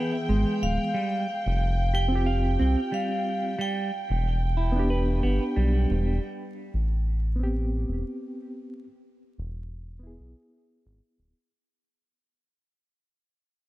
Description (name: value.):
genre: trip hop.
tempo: 91 BPM.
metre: 4/4.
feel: swing 54% on 16ths.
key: unclear.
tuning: A4 = 440 Hz.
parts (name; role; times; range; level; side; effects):
reed electric piano; accompaniment; 0.0-11.5 s; E3 to G#4; -31 LUFS; equal; fast tremolo, harmonic tremolo, low-pass filter, tape echo.
dark chamber violin section; sustained chords; 0.0-6.2 s; G5; -38 LUFS; left 1 dB; none.
semi-hollow electric guitar; arpeggios; 0.0-6.2 s; G3 to F5; -31 LUFS; right 2 dB; tape echo.
round analog bass; bass; 0.3-11.3 s; D1 to C2; -25 LUFS; equal; none.
vibraphone with medium hard mallets; melody; 0.6-5.5 s; F5 to G5; -32 LUFS; right 1 dB; dub echo.
room: light reverb, small room ambience.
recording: echo-heavy mix, vinyl crackle.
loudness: -24 LUFS.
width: side -16 dB against mid.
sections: 0.0-6.2 A section; 6.2-11.5 B section.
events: fade-out 6.2-11.5; filter sweep on reed electric piano 6.2-11.5.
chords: 0.0 E; 0.9 Fsus2; 3.6 Em7; 6.2 Am7; 8.9 E.